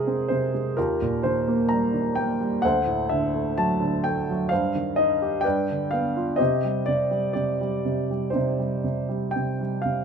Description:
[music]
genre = classical, lyrical solo piano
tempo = 64 BPM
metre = 4/4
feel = rubato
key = C minor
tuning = A4 = 440 Hz
[part]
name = warm baby grand piano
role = solo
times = 0.0-10.0 s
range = D2 to Bb5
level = -22 LUFS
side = right 1 dB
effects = none
[sound]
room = moderate studio reverb, RT60 0.7 s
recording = none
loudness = -22 LUFS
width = side -6 dB against mid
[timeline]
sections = 0.0-10.0 A section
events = none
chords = 0.0 Ab6/C; 0.8 Ebadd9; 2.6 D7; 4.5 Cm/G; 5.4 G7; 6.4 Cm

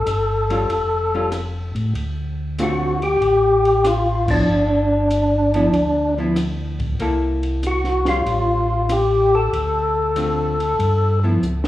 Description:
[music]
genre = soul jazz organ trio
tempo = 95 BPM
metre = 4/4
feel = swing 69% on 8ths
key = unclear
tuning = A4 = 440 Hz
[part]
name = percussive tonewheel organ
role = melody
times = 0.0-11.2 s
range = D4 to A4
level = -18 LUFS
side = left 1 dB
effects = slow rotary speaker, overdrive, slapback echo
[part]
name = mellow tonewheel organ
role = bass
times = 0.0-11.7 s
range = E#1 to A2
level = -22 LUFS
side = equal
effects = slow rotary speaker
[part]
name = compact cocktail drum kit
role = drums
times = 0.1-11.7 s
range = crash cymbal, hi-hat, kick drum, ride cymbal, rim click, snare drum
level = -31 LUFS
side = equal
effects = none
[part]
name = archtop guitar, miked and amplified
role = accompaniment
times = 0.5-11.4 s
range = D3 to A4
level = -24 LUFS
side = equal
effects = slapback echo
[sound]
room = light reverb, studio ambience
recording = live gig heard through the venue's PA, club reverb, small room reverb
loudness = -17 LUFS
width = side -14 dB against mid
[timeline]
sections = 0.0-11.7 A section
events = band accent 4.2-4.5; drum fill 11.4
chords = 0.0 Aaug7; 2.0 Dm7; 4.5 G6; 7.0 C6; 8.3 Aaug7; 9.5 Dm7; 10.8 G6

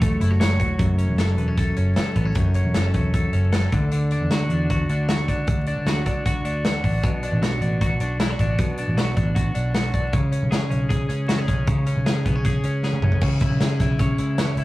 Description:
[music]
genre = jangly indie pop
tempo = 155 BPM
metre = 4/4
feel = straight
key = F# minor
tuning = A4 = 439 Hz
[part]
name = twelve-string electric guitar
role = arpeggios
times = 0.0-14.6 s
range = F#2 to C#5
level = -24 LUFS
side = equal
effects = none
[part]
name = vintage muted picked electric bass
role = bass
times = 0.0-14.6 s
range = E1 to E2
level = -24 LUFS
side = equal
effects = none
[part]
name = modern studio drum kit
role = drums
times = 0.0-14.6 s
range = crash cymbal, hi-hat, kick drum, snare drum, toms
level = -23 LUFS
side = equal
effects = none
[sound]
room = wet booth ambience, RT60 0.2 s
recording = rough rehearsal-room recording, vinyl crackle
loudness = -19 LUFS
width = side -18 dB against mid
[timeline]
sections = 0.8-13.2 A section; 13.2-14.6 B section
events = drum fill 12.8-13.2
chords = 0.0 F#m7; 3.7 Dadd9; 7.0 Bm7; 10.1 C#5; 13.2 C#m

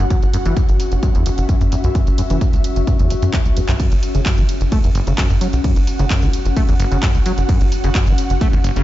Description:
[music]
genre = driving peak-time techno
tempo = 130 BPM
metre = 4/4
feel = straight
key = unclear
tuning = A4 = 439 Hz
[part]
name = acid bass, saw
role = riff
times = 0.0-8.8 s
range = F#1 to A3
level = -22 LUFS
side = equal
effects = analog chorus, sidechain pumping, dub echo
[part]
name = tight sequencer bass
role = bass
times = 0.0-8.8 s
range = F#1 to F#2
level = -18 LUFS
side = equal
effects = sidechain pumping
[part]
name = ethereal airy pad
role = texture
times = 0.0-8.8 s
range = C#4 to F#5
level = -24 LUFS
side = left 2 dB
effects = ensemble chorus, built-in reverb, sidechain pumping
[part]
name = electronic kick drum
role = drums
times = 0.1-8.5 s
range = none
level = -16 LUFS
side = equal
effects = none
[part]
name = techno drum kit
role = drums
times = 0.1-8.8 s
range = handclaps, hi-hat, ride cymbal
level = -27 LUFS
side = right 1 dB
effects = none
[sound]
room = little or no reverb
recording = played on a big sound system in a bare room, large studio reverb, nothing above 7.6 kHz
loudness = -14 LUFS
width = side -15 dB against mid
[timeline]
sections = 0.0-3.8 A section; 3.8-8.8 B section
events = drum fill 3.3-3.8; band accent 3.7; drop 3.8-8.8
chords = 0.0 F#5

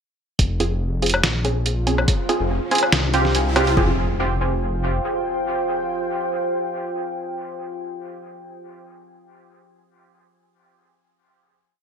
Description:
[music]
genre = deep dubstep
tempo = 142 BPM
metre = 4/4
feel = swing 54% on 16ths, half-time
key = F minor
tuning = A4 = 441 Hz
[part]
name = deep dark ambient pad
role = sustained chords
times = 0.9-7.9 s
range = C4 to G5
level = -27 LUFS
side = equal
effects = chorus, built-in reverb
[part]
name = dark detuned saw bass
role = bass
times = 0.4-5.0 s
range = F1 to C2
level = -22 LUFS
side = equal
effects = tube saturation
[part]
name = electronic kick drum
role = drums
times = 0.4-3.9 s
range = none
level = -20 LUFS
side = equal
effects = none
[part]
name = trip hop sampler-style drum kit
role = drums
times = 0.4-3.8 s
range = hi-hat, snare drum, woodblock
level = -21 LUFS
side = equal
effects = none
[part]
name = riser and impact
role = sound effects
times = 2.2-7.9 s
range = none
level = -30 LUFS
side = equal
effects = none
[part]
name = filtered dub chord stab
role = stabs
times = 0.6-7.9 s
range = C4 to Ab4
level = -24 LUFS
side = right 2 dB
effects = chorus, dub echo
[sound]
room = moderate plate reverb, RT60 1.0 s, digital ambience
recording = bright 1980s-style digital production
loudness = -19 LUFS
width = side -7 dB against mid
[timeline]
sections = 0.4-3.8 build; 3.8-7.2 final chord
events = build-up 0.4-3.8; filter sweep on synth stab 0.4-3.8; riser 2.2-3.8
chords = 0.4 Fm; 1.2 Bbm7; 2.1 Fm; 2.9 Csus4; 3.8 Fm

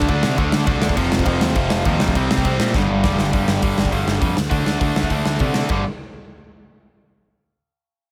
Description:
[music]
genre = punk rock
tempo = 203 BPM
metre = 4/4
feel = straight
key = unclear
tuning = A4 = 438 Hz
[part]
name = crunchy overdriven guitar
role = riff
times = 0.0-5.8 s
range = F2 to D4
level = -22 LUFS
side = equal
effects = none
[part]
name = growling picked electric bass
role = bass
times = 0.0-5.8 s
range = F1 to C3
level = -25 LUFS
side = equal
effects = overdrive
[part]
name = big rock drum kit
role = drums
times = 0.0-5.8 s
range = crash cymbal, hi-hat, kick drum, snare drum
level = -24 LUFS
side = equal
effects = none
[sound]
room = light reverb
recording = none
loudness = -19 LUFS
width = mono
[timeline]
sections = 0.0-3.3 A section; 3.3-5.7 B section; 5.7-6.9 C section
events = drum fill 2.7-3.3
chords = 0.0 D5; 1.0 F5; 2.2 C5; 2.7 G5; 4.4 D5; 5.7 G5

